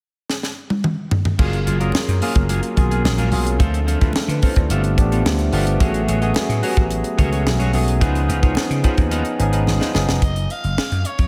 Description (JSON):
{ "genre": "polished 1980s jazz-funk pop", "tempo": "109 BPM", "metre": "4/4", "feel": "straight", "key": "unclear", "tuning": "A4 = 440 Hz", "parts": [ { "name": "tight funk drum kit", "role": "drums", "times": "0.3-11.3 s", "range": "crash cymbal, hi-hat, kick drum, snare drum, toms", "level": "-22 LUFS", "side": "equal", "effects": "none" }, { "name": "barky tine electric piano", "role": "accompaniment", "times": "1.4-10.2 s", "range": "F3 to D5", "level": "-25 LUFS", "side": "equal", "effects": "overdrive, lush chorus, slapback echo" }, { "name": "electric guitar at the edge of break-up", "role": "riff", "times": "1.4-10.1 s", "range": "A#3 to D#5", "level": "-30 LUFS", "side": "equal", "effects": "analog chorus, slapback echo" }, { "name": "vintage slap bass", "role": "bass", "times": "1.4-11.3 s", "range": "E#1 to D3", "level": "-22 LUFS", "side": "equal", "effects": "none" }, { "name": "congas", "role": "percussion", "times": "1.4-10.1 s", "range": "none", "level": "barely audible", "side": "none", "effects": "none" }, { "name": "raspy soprano saxophone", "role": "melody", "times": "10.2-11.3 s", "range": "C#5 to E#5", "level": "-29 LUFS", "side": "equal", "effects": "none" } ], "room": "moderate concert hall reverb, RT60 2.3 s", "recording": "big arena sound", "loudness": "-19 LUFS", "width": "mono", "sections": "0.0-1.4 A section; 1.4-10.2 B section; 10.2-11.3 C section", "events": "drum fill 0.3-1.4, 9.7-10.2", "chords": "0.0 N.C.; 1.4 F#maj9; 3.6 Dm7; 4.7 G9; 5.8 Amaj13; 8.0 C#9; 10.2 F#maj7(no3)", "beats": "0.29 0.84 | 1.39 1.94 2.49 3.04 | 3.60 4.15 4.70 5.25 | 5.80 6.36 6.91 7.46 | 8.01 8.56 9.12 9.67 | 10.22 10.77" }